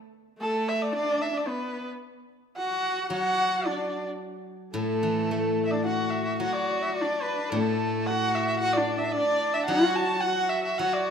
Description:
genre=chinese traditional, Chinese chamber ensemble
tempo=110 BPM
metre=2/4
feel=rubato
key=unclear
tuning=A4 = 441 Hz
part: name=rich erhu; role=melody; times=0.4-11.1 s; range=A4 to A5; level=-27 LUFS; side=right 1 dB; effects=none
part: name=clear horsehead fiddle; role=second line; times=0.4-11.1 s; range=A3 to F#4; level=-29 LUFS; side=left 1 dB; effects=none
part: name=steel-string zither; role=accompaniment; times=3.1-11.1 s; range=A2 to A3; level=-30 LUFS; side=left 2 dB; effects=none
room=moderate scoring stage reverb, RT60 1.7 s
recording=none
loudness=-24 LUFS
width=side -7 dB against mid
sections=0.0-6.4 A section; 6.4-11.1 B section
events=none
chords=none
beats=0.40 | 0.94 1.48 | 2.04 2.59 | 3.13 3.67 | 4.21 4.76 | 5.32 5.87 | 6.44 7.00 | 7.56 8.10 | 8.63 9.16 | 9.70 10.25 | 10.81

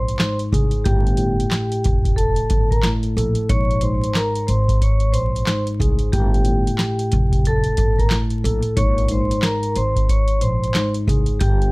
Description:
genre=hip hop, boom-bap hip-hop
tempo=91 BPM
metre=4/4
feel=swing 60% on 16ths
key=unclear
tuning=A4 = 440 Hz
part: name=vibraphone with medium mallets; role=melody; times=0.0-11.7 s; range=G4 to Db6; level=-24 LUFS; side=equal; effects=high-pass filter, low-pass filter, analog delay
part: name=mellow tine electric piano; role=accompaniment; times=0.0-11.4 s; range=Ab2 to A4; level=-24 LUFS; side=equal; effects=fast stereo tremolo, cassette tape, high-pass filter, low-pass filter
part: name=upright bass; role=bass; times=0.0-11.7 s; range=F1 to C2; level=-21 LUFS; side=equal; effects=none
part: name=booming analog drum machine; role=drums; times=0.1-11.7 s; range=handclaps, hi-hat, kick drum, snare drum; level=-20 LUFS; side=equal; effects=none
part: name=finger snap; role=percussion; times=0.2-10.9 s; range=none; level=-37 LUFS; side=right 5 dB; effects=none
room=light reverb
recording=dark, warm production, vinyl crackle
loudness=-16 LUFS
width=side -25 dB against mid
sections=0.0-11.7 A section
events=none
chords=0.0 Bb7sus2; 0.9 G7sus2; 3.5 Bbm9; 6.1 G7sus2; 8.8 Bbm9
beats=0.20 | 0.86 1.51 2.17 2.83 | 3.49 4.15 4.81 5.47 | 6.13 6.79 7.45 8.11 | 8.77 9.43 10.09 10.75 | 11.40

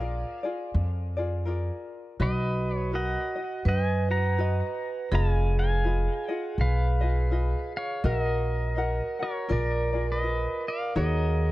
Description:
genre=Hawaiian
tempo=82 BPM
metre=4/4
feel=swing 60% on 8ths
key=unclear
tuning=A4 = 444 Hz
part: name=pedal steel guitar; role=melody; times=0.0-11.5 s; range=Bb4 to A#5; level=-32 LUFS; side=left 1 dB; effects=tape echo
part: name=tenor ukulele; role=accompaniment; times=0.0-11.5 s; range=Eb4 to Gb5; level=-34 LUFS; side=left 3 dB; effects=none
part: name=upright bass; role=bass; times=0.0-11.5 s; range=F1 to F#2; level=-26 LUFS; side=equal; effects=none
part: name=vibraphone with medium hard mallets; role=second line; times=2.2-11.5 s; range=F#4 to B4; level=-33 LUFS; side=right 5 dB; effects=none
room=small room ambience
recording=dark, warm production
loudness=-25 LUFS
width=side -17 dB against mid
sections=0.0-11.5 A section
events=none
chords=0.0 Bb7; 2.2 Bmaj7; 5.1 Fm7b5; 8.0 Ebm/Bb; 9.5 Bb7; 11.0 Ebm7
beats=0.00 0.73 1.46 | 2.19 2.92 3.65 4.38 | 5.12 5.84 6.58 7.31 | 8.04 8.77 9.50 10.23 | 10.96

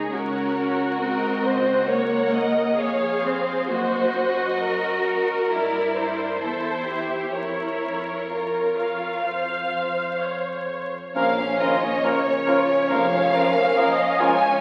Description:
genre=classical, slow romantic movement for symphony orchestra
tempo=61-70 BPM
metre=4/4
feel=rubato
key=Bb minor from 3.7 s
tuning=A4 = 439 Hz
part: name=rich studio violin section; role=melody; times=0.0-14.6 s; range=Db5 to Ab5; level=-32 LUFS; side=equal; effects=none
part: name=warm symphonic violin section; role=second line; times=0.0-14.6 s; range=Bb3 to Eb5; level=-27 LUFS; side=equal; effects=none
part: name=clear symphonic viola section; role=accompaniment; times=0.0-14.6 s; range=Gb4 to F5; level=-29 LUFS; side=equal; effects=none
part: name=rich symphonic double bass section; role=bass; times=0.0-13.6 s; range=F1 to G2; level=-39 LUFS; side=equal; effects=none
part: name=warm symphonic cello section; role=bass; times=0.0-13.6 s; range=F2 to Gb4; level=-31 LUFS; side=equal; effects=none
part: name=clear cor anglais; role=second line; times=11.2-14.4 s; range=Bb4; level=-30 LUFS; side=equal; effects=none
part: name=mellow clarinet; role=second line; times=11.2-14.4 s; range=Db4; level=-34 LUFS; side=equal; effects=none
part: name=mellow large flute ensemble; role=second line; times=11.2-14.4 s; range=Db5 to Ab5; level=-29 LUFS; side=equal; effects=none
part: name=mellow bassoon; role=accompaniment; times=11.2-14.4 s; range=F3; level=-31 LUFS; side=equal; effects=none
part: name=clear trombone section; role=sustained chords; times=11.2-14.6 s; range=F3 to Db4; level=-36 LUFS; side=equal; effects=none
part: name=warm French horn section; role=sustained chords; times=11.2-14.6 s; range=Db3 to Ab3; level=-33 LUFS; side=equal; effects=none
part: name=clear tuba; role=bass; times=11.2-13.6 s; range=F1 to Bb1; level=-38 LUFS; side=equal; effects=none
room=wet scoring stage reverb, RT60 1.5 s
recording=very old 78 rpm record, vinyl crackle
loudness=-23 LUFS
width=mono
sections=0.0-11.2 A section; 11.2-14.6 B section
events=none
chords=0.1 Ebm7/Db; 3.7 Ebm/Gb; 5.5 C7/G; 7.3 Bbm/F; 9.2 F5; 11.2 Bbm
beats=| 0.12 1.00 1.88 2.77 | 3.69 4.62 5.51 6.40 | 7.33 8.29 9.23 10.20 | 11.15 12.04 12.91 13.78

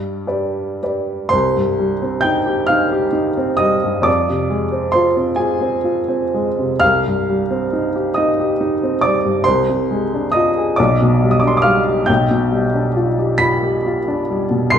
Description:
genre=classical, romantic nocturne for solo piano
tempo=45 BPM (dotted quarters)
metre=6/8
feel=uneven beats, rubato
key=C minor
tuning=A4 = 438 Hz
part: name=warm upright piano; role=solo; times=0.0-14.8 s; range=B1 to C7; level=-14 LUFS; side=equal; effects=none
room=wet recital hall reverb, RT60 1.3 s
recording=minimal, uncompressed stereo recording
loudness=-15 LUFS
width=side -8 dB against mid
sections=0.0-1.3 A section; 1.3-14.8 B section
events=none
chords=0.0 G; 1.3 Cm; 4.1 Fm; 6.8 Cm; 9.5 Dm7b5/C; 10.8 G7/B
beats=| 1.33 2.71 | 4.07 5.38 | 6.81 8.17 | 9.46 10.78 | 12.08 13.39 | 14.74

